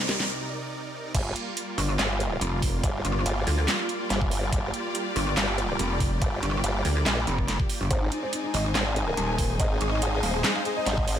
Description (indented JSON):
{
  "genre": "heavy wobble dubstep",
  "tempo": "142 BPM",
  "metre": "4/4",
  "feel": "swing 53% on 16ths, half-time",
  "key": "G phrygian",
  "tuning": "A4 = 440 Hz",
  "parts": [
    { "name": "felt-muted upright piano", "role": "melody", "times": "0.0-0.3, 7.9-11.2 s", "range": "C4 to F5", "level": "-33 LUFS", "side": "left 1 dB", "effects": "ping-pong delay" },
    { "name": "supersaw chords", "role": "sustained chords", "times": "0.0-11.2 s", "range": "C2 to D5", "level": "-34 LUFS", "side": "right 2 dB", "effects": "sidechain pumping" },
    { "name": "rich studio string section", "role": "texture", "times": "0.0-11.2 s", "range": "Eb4 to Ab5", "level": "-33 LUFS", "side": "left 2 dB", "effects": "sidechain pumping" },
    { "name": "dubstep drum kit", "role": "drums", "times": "0.1-11.2 s", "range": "crash cymbal, handclaps, hi-hat, snare drum", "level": "-29 LUFS", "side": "right 1 dB", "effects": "small room reverb" },
    { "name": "formant-sweep wobble bass", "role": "bass", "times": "1.1-11.2 s", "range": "G1 to Bb1", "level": "-28 LUFS", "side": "equal", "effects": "chorus, overdrive" },
    { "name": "electronic kick drum", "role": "drums", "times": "1.1-11.1 s", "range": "none", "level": "-28 LUFS", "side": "equal", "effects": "small room reverb" },
    { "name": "pulsing pluck wobble bass", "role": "bass", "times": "1.8-10.4 s", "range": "Eb1 to D2", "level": "-26 LUFS", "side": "equal", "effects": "chorus, overdrive" }
  ],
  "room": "light reverb",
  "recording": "none",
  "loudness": "-24 LUFS",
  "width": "side -10 dB against mid",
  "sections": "0.0-1.1 A section; 1.1-11.2 B section",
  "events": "build-up 0.0-1.1; drum fill 0.0-0.3; break 0.3-1.1; drop 1.1-11.2",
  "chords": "0.0 Cm7; 1.1 Gm7; 7.9 Ab"
}